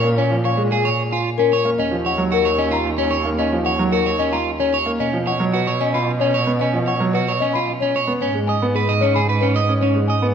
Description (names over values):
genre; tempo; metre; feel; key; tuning
classical, minimalist pattern music; 112 BPM; 3/4; straight; Eb minor; A4 = 440 Hz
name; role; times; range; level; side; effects
clear grand piano; accompaniment; 0.0-10.3 s; F3 to Db4; -24 LUFS; right 1 dB; none
electric guitar at the edge of break-up; arpeggios; 0.0-10.3 s; Db4 to Eb5; -21 LUFS; right 5 dB; none
rich cello; bass; 0.0-10.3 s; Eb2 to B2; -22 LUFS; right 2 dB; none
folk marimba with soft mallets; melody; 0.2-10.3 s; Ab4 to B5; -22 LUFS; left 10 dB; none
room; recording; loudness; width
moderate scoring stage reverb, RT60 1.6 s; none; -16 LUFS; side -7 dB against mid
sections
0.0-10.3 A section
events
none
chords
0.0 Bbm7; 1.8 Ebm7; 5.0 Badd9; 8.2 Abm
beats
| 0.17 0.71 1.25 | 1.78 2.32 2.85 | 3.39 3.92 4.46 | 5.00 5.53 6.07 | 6.60 7.14 7.67 | 8.21 8.75 9.28 | 9.82